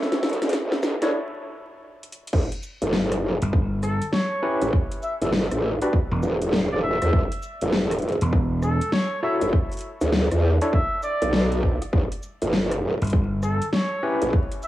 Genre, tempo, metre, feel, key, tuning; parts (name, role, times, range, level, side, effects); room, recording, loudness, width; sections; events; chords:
glitch hop; 100 BPM; 4/4; swing 63% on 16ths; A4 = 441 Hz
growl bass; bass; 0.0-14.3 s; E1 to E2; -22 LUFS; equal; chorus, tube saturation, high-pass filter
dubstep drum kit; drums; 0.0-14.7 s; crash cymbal, hi-hat, rim click, shaker, snare drum; -26 LUFS; left 1 dB; cassette tape
electronic kick drum; drums; 0.5-14.5 s; -23 LUFS; equal; distortion, high-pass filter on kick, cassette tape
overdriven tine electric piano; stabs; 1.0-14.3 s; C#4 to C#5; -28 LUFS; left 1 dB; medium tremolo, sidechain pumping, cassette tape, analog delay
gritty slap bass; bass; 3.4-8.8, 13.0-13.6 s; E1 to G1; -22 LUFS; equal; overdrive, tube saturation
mellow trumpet; melody; 3.8-14.7 s; A4 to E5; -29 LUFS; equal; cassette tape, analog delay
light reverb; home recording on cassette, vinyl crackle, high-pass filter, small room ambience; -21 LUFS; side -14 dB against mid
0.0-2.3 A section; 2.3-14.7 B section
build-up 0.0-2.3; drum fill 0.0-1.1, 2.0-2.3; filter sweep 0.0-2.3; break 1.1-2.3; drop 2.3-14.7
0.0 Bmadd11; 2.3 A7 (rootless); 4.7 Em; 7.1 F#7(no3); 9.5 Bmadd11; 11.9 A7 (rootless)